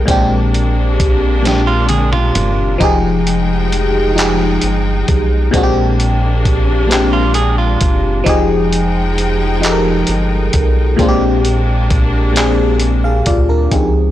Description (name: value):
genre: slow six-eight R&B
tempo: 44 BPM (dotted quarters)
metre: 6/8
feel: straight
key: unclear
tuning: A4 = 436 Hz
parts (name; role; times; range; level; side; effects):
- FM electric piano; accompaniment; 0.0-14.1 s; Bb2 to F5; -15 LUFS; left 1 dB; chorus, phaser
- clear studio string section; sustained chords; 0.0-13.7 s; F3 to G5; -22 LUFS; left 1 dB; none
- rubbery square bass; bass; 0.0-14.1 s; F1 to D2; -16 LUFS; equal; transformer saturation
- dusty soul sampler-style drum kit; drums; 0.1-13.9 s; handclaps, hi-hat, kick drum, snare drum, toms; -17 LUFS; equal; soft clipping on snare
- clean electric guitar; second line; 1.7-2.8, 7.1-8.2 s; F4 to Ab4; -20 LUFS; right 5 dB; none
room: digital ambience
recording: blown-out, overdriven recording, overdrive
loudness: -11 LUFS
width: side -13 dB against mid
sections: 0.0-13.7 A section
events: drum fill 1.4-2.8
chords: 0.1 Bb13; 2.8 Fm9; 5.5 Bb13; 8.3 Fm9; 11.0 Bb13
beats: | 0.08 1.44 | 2.81 4.17 | 5.53 6.90 | 8.26 9.62 | 10.99 12.35 | 13.72